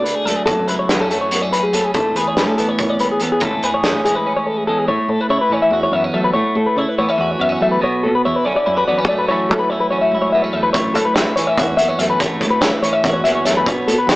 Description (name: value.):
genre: math rock and midwest emo.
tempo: 287 BPM (eighths).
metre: 7/8.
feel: straight.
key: A major.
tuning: A4 = 440 Hz.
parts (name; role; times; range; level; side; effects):
twelve-string electric guitar; accompaniment; 0.0-14.2 s; E2 to G#4; -20 LUFS; right 1 dB; none.
clean electric guitar; arpeggios; 0.0-14.2 s; G#4 to E5; -17 LUFS; left 2 dB; none.
fingered electric bass; bass; 0.0-14.2 s; E1 to F#3; -25 LUFS; equal; none.
loose indie drum kit; drums; 0.1-4.1, 10.7-14.2 s; hi-hat, kick drum, snare drum; -20 LUFS; equal; none.
room: moderate stone room reverb, RT60 1.1 s.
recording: rough rehearsal-room recording, small speaker sound.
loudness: -14 LUFS.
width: side -19 dB against mid.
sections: 0.0-4.9 A section; 4.9-14.2 B section.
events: break 4.3-4.9.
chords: 0.5 F#m7; 1.9 Aadd9; 3.4 Amaj7; 4.9 A6; 7.8 Bm9; 9.3 F#m7/A; 10.7 A6.